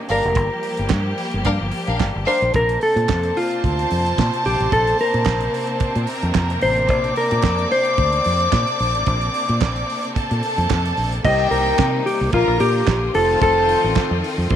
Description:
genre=disco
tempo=110 BPM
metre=4/4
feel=straight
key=unclear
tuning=A4 = 440 Hz
part: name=bright studio string section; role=sustained chords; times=0.0-14.6 s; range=C3 to D5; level=-27 LUFS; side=left 1 dB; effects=none
part: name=mellow electric guitar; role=melody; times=0.1-14.6 s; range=F4 to Eb5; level=-20 LUFS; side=equal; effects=none
part: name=warm studio violin section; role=second line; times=0.1-14.6 s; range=D4 to D6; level=-23 LUFS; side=equal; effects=none
part: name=fingered electric bass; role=bass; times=0.1-14.6 s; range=F1 to C3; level=-22 LUFS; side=equal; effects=none
part: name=damped 70s drum kit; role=drums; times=0.1-14.6 s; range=crash cymbal, handclaps, hi-hat, kick drum, snare drum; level=-24 LUFS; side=right 4 dB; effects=none
part: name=warm horn section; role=stabs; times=11.2-14.6 s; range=Eb3 to C5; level=-24 LUFS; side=left 14 dB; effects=none
room=light reverb, small room ambience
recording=1960s-style stereo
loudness=-16 LUFS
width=side -10 dB against mid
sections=0.0-2.5 A section; 2.5-11.2 B section; 11.2-14.6 C section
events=none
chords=0.1 Gm7; 2.5 Bbmaj9; 11.2 Cm7; 12.3 Bb; 13.1 F7

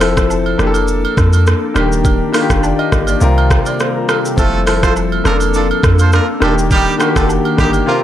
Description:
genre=afrobeats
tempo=103 BPM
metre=4/4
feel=swing 55% on 16ths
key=unclear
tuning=A4 = 441 Hz
part: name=warm grand piano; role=accompaniment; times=0.0-8.0 s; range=C3 to F5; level=-16 LUFS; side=left 3 dB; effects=none
part: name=glassy FM pad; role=sustained chords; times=0.3-8.0 s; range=C3 to A4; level=-21 LUFS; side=left 1 dB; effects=ensemble chorus, built-in reverb
part: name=warm 808-style bass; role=bass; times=0.0-7.8 s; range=Eb1 to F2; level=-15 LUFS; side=equal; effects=none
part: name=afro-pop drum kit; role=drums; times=0.0-7.9 s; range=hi-hat, kick drum, rim click, shaker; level=-16 LUFS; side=equal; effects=vintage 12-bit sampler grit
part: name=agogo bells and woodblock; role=percussion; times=0.0-7.9 s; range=none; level=-23 LUFS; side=right 8 dB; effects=none
part: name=clear horn section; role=second line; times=4.4-8.0 s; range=G3 to C5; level=-19 LUFS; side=right 4 dB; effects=none
room=little or no reverb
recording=none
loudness=-11 LUFS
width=side -11 dB against mid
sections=0.0-8.0 A section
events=none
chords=0.0 Fmaj7; 0.6 Bbmaj7/F; 1.8 Ebmaj7; 3.2 C7sus4; 4.4 Fmaj7; 5.3 Bbmaj7/F; 6.4 Ebmaj7

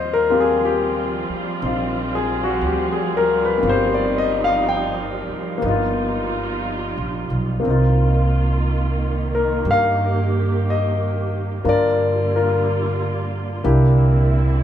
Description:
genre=jazz ballad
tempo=60 BPM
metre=4/4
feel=swing 67% on 8ths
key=Eb major, C minor from 7.6 s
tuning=A4 = 440 Hz
part: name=warm concert grand piano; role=accompaniment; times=0.0-14.6 s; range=Bb3 to G5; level=-20 LUFS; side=left 3 dB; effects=none
part: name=muted studio string section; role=sustained chords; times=0.0-14.6 s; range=D3 to G4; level=-26 LUFS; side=right 3 dB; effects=none
part: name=upright bass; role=bass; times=0.0-14.6 s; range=G1 to G2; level=-21 LUFS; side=right 1 dB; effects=none
room=light reverb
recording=band playing live in one room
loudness=-17 LUFS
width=side -10 dB against mid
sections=0.0-7.6 A section; 7.6-14.6 B section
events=none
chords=0.0 Eb69; 5.6 G7alt; 7.6 Cm7; 11.6 Gm7; 13.6 C9

